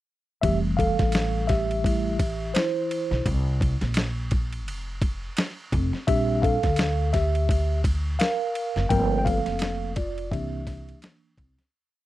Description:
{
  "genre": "hip hop, jazz-hop",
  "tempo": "85 BPM",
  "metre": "4/4",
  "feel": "swing 58% on 16ths",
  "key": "F major",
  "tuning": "A4 = 441 Hz",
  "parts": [
    { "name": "mellow tine electric piano", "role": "accompaniment", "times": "0.4-11.3 s", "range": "E3 to G5", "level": "-25 LUFS", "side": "equal", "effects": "medium stereo tremolo" },
    { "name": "upright bass", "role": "bass", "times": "0.4-11.6 s", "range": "F1 to D2", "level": "-27 LUFS", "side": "equal", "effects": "none" },
    { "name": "dusty soul sampler-style drum kit", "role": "drums", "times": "0.4-11.7 s", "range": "hi-hat, kick drum, ride cymbal, snare drum", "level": "-27 LUFS", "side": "equal", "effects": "overdrive" }
  ],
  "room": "little or no reverb",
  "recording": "dry, close 1970s-style studio recording",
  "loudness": "-22 LUFS",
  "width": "side -15 dB against mid",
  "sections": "0.4-11.7 head",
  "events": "tine electric piano solo 0.4-11.7; break 3.3-6.1; fade-out 8.9-11.7",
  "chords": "0.4 Fmaj9; 3.3 Bbsus2; 4.7 N.C.; 6.1 Bb69; 8.9 Gm11; 10.3 C9",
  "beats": "| 0.43 1.14 1.85 2.55 | 3.26 3.96 4.67 5.38 | 6.08 6.79 7.49 8.20 | 8.90 9.61 10.32 11.02"
}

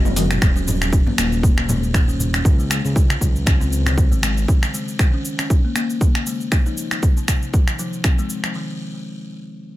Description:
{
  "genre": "afro house",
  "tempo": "118 BPM",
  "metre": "4/4",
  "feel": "swing 56% on 16ths",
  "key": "Eb dorian",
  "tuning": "A4 = 441 Hz",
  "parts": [
    { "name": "smooth synth bass", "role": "bass", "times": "0.0-4.5 s", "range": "Eb1 to Db2", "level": "-22 LUFS", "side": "equal", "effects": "sidechain pumping" },
    { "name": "house drum kit", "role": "drums", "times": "0.1-8.5 s", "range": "finger snaps, hi-hat, shaker, toms", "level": "-24 LUFS", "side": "equal", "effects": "none" },
    { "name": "congas", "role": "percussion", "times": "0.1-4.3 s", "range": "none", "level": "-27 LUFS", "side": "left 1 dB", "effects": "none" },
    { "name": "buzzing kalimba", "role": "arpeggios", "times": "0.2-8.8 s", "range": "C3 to Eb4", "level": "-25 LUFS", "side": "left 2 dB", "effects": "sidechain pumping, low-pass filter, digital delay" },
    { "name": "electronic kick drum", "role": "drums", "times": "0.4-8.2 s", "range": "none", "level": "-16 LUFS", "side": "equal", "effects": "none" }
  ],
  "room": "digital ambience",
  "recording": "none",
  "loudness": "-16 LUFS",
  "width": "side -15 dB against mid",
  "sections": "0.4-8.6 A section; 8.6-9.8 B section",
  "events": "drum fill 0.0-0.4",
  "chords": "0.4 Eb5; 2.5 Db5; 4.5 Eb5; 6.5 F7(no3); 8.6 N.C.",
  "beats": "| 0.42 0.92 1.43 1.94 | 2.45 2.96 3.47 3.98 | 4.48 4.99 5.50 6.01 | 6.52 7.03 7.54 8.04 | 8.55"
}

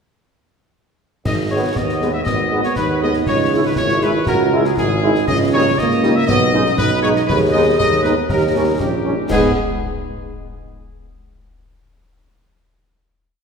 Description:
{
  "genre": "military-style march for wind band",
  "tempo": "119 BPM",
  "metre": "2/4",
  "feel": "straight",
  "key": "G# minor",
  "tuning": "A4 = 440 Hz",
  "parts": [
    { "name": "clear trumpet section", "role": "melody", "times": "1.3-9.5 s", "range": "G4 to E5", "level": "-21 LUFS", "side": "left 2 dB", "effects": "none" },
    { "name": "mellow euphonium", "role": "second line", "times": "1.3-9.1 s", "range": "A#3 to G#4", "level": "-20 LUFS", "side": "right 3 dB", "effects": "none" },
    { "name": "warm tuba", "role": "bass", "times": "1.3-9.5 s", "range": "G#1 to G#2", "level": "-20 LUFS", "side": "right 2 dB", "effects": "none" },
    { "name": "concert snare drum, clash cymbals and concert bass drum", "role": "drums", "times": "1.3-9.6 s", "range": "none", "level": "-25 LUFS", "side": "left 2 dB", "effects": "none" },
    { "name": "dark French horn section", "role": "accompaniment", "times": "1.5-9.5 s", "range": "G#3 to G#4", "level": "-24 LUFS", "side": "left 3 dB", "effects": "none" },
    { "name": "warm trombone section", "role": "sustained chords", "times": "1.5-9.5 s", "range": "G3 to E4", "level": "-25 LUFS", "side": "right 1 dB", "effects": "none" }
  ],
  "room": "wet concert hall reverb, RT60 2.3 s",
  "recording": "recorded in a church or concert hall",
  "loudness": "-14 LUFS",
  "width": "side -6 dB against mid",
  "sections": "1.3-9.3 A section; 9.3-10.3 final chord",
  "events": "none",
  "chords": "1.3 G#m; 3.3 C#m; 5.3 D#7/C#; 6.3 G#m/B; 7.3 G#m/D#; 8.3 D#7; 9.3 G#m",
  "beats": "| 1.26 1.76 | 2.26 2.77 | 3.27 3.77 | 4.27 4.78 | 5.28 5.78 | 6.28 6.79 | 7.29 7.79 | 8.29 8.80 | 9.30"
}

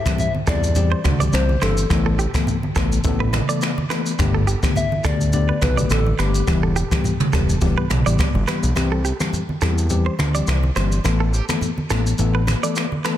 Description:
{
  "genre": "afrobeats",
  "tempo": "105 BPM",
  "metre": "4/4",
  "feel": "swing 55% on 16ths",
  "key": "C major",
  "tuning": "A4 = 440 Hz",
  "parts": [
    { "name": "soft struck synth lead", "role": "melody", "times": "0.0-7.3 s", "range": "G4 to E5", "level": "-26 LUFS", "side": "left 3 dB", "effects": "chorus, ping-pong delay" },
    { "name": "bell-like tine electric piano", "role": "accompaniment", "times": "0.1-13.2 s", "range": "D3 to A4", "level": "-24 LUFS", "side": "left 4 dB", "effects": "none" },
    { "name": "jazz brush drum kit", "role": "drums", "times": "0.1-13.2 s", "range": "finger snaps, kick drum, rim click, shaker, toms", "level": "-22 LUFS", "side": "equal", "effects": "soft clipping on snare" },
    { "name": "congas", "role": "percussion", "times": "0.1-13.0 s", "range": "none", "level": "-28 LUFS", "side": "right 2 dB", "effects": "none" },
    { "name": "direct-recorded clean electric guitar", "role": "riff", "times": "0.5-13.2 s", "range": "G4 to D5", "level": "-29 LUFS", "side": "right 8 dB", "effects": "spring reverb, ping-pong delay" },
    { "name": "fat analog bass", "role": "bass", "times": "0.5-12.6 s", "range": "E1 to E2", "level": "-20 LUFS", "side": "equal", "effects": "none" }
  ],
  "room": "studio reverb",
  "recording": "dense, heavily limited modern master",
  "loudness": "-17 LUFS",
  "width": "side -12 dB against mid",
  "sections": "0.0-8.8 A section; 8.8-13.2 B section",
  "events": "kick muted 8.8-13.2",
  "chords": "0.0 C; 1.9 Asus2; 4.2 Gadd9; 6.5 Em; 8.8 C; 11.0 Asus2",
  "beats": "0.19 0.76 1.33 | 1.90 2.48 3.05 3.62 | 4.19 4.76 5.33 5.90 | 6.47 7.05 7.62 8.19 | 8.76 9.33 9.90 10.47 | 11.05 11.62 12.19 12.76"
}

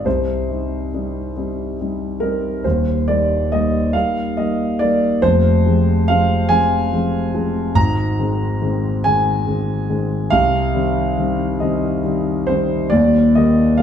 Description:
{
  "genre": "neoclassical minimalist piano",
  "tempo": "47 BPM (dotted quarters)",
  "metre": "6/8",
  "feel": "rubato",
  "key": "C minor",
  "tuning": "A4 = 442 Hz",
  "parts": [
    { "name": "dark concert grand piano", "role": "solo", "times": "0.0-13.8 s", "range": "Eb1 to Bb5", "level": "-15 LUFS", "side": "equal", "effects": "none" }
  ],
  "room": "wet stone room reverb, RT60 1.4 s",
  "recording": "band playing live in one room",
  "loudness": "-15 LUFS",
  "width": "side -8 dB against mid",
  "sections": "0.0-13.8 A section",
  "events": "none",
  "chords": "0.0 Cm; 2.6 Eb; 5.2 Fm; 7.8 Ab; 10.3 Cm; 12.9 Eb",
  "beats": "| 0.05 1.35 | 2.64 3.93 | 5.21 6.49 | 7.76 9.04 | 10.33 11.62 | 12.90"
}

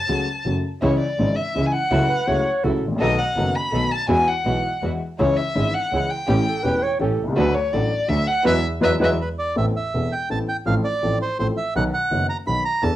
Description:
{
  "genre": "tango",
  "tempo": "165 BPM",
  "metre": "3/4",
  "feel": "rubato",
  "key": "A minor from 9.6 s",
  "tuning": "A4 = 440 Hz",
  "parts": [
    { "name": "warm violin", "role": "second line", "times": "0.0-9.1 s", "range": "B4 to B5", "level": "-23 LUFS", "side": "left 1 dB", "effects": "cassette tape" },
    { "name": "warm upright piano", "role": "accompaniment", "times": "0.1-13.0 s", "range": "E1 to A4", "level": "-24 LUFS", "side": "left 2 dB", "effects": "cassette tape" },
    { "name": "clear double bass", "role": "bass", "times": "0.1-13.0 s", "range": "E1 to E2", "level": "-25 LUFS", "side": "right 2 dB", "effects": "none" },
    { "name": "dark symphonic string section", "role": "stabs", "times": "0.8-9.1 s", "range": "G#3 to A4", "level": "-29 LUFS", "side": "right 3 dB", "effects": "cassette tape" },
    { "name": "warm clarinet", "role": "second line", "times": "2.1-2.9, 6.5-9.1 s", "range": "A4 to C#5", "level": "-22 LUFS", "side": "right 1 dB", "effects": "cassette tape" },
    { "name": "bandoneon", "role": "melody", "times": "9.2-13.0 s", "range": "B4 to B5", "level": "-24 LUFS", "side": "right 2 dB", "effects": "cassette tape" }
  ],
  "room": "moderate studio reverb, RT60 0.6 s",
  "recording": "home recording on cassette",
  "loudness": "-19 LUFS",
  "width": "side -14 dB against mid",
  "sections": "0.0-9.6 A section; 9.6-13.0 B section",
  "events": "violin solo 0.0-9.6; band accent 8.5-9.6",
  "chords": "0.0 F#m; 0.8 C#m; 1.9 F#m7/C#; 3.0 B7; 4.1 Eadd9; 5.2 C#m; 6.3 A7; 7.4 D; 8.5 Eadd9; 9.6 Amadd9; 10.7 F/A; 11.8 B",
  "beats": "0.09 0.46 | 0.83 1.19 1.56 | 1.92 2.28 2.64 | 3.00 3.36 3.72 | 4.09 4.46 4.82 | 5.19 5.56 5.92 | 6.29 6.65 7.01 | 7.37 7.73 8.09 | 8.46 8.82 9.20 | 9.57 9.94 10.30 | 10.66 11.03 11.39 | 11.75 12.11 12.47 | 12.83"
}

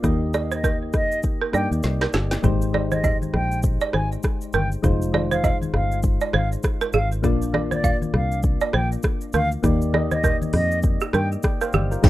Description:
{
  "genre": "afrobeats",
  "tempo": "100 BPM",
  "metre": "4/4",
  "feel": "swing 58% on 16ths",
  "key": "unclear",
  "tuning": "A4 = 440 Hz",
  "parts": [
    { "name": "soft electric-piano-like synth keys", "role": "accompaniment", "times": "0.0-12.1 s", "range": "Ab3 to G5", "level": "-28 LUFS", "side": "left 2 dB", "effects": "chorus" },
    { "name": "fingered electric bass", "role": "bass", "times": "0.0-12.1 s", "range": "F1 to G2", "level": "-24 LUFS", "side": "equal", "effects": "none" },
    { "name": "afro-pop drum kit", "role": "drums", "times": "0.0-12.1 s", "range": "crash cymbal, hi-hat, kick drum, rim click, shaker, snare drum", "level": "-23 LUFS", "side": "equal", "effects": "overdrive" },
    { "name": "balafon", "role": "riff", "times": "0.3-11.8 s", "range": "G4 to F5", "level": "-25 LUFS", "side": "right 6 dB", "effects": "digital delay" },
    { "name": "silver concert flute", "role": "melody", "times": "0.5-11.3 s", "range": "D5 to Ab5", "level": "-27 LUFS", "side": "equal", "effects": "none" },
    { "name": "congas", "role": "percussion", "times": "2.4-12.1 s", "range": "none", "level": "-29 LUFS", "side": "left 3 dB", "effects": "none" },
    { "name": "mellow horn section", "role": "second line", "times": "12.0-12.1 s", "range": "Eb3 to G4", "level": "-27 LUFS", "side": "right 3 dB", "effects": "none" },
    { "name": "impact", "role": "sound effects", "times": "12.0-12.1 s", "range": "none", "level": "-14 LUFS", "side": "equal", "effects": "none" }
  ],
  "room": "little or no reverb",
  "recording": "rough home demo mix",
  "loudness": "-19 LUFS",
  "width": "side -16 dB against mid",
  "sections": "0.0-2.4 A section; 2.4-12.0 B section",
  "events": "drum fill 1.8-2.4",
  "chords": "0.0 Ebmaj7; 2.4 Abmaj7; 4.8 Fm7; 7.2 Bb; 9.6 Ebmaj7",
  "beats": "| 0.04 0.64 1.24 1.84 | 2.44 3.04 3.64 4.24 | 4.84 5.44 6.04 6.64 | 7.24 7.84 8.44 9.04 | 9.64 10.24 10.84 11.44 | 12.04"
}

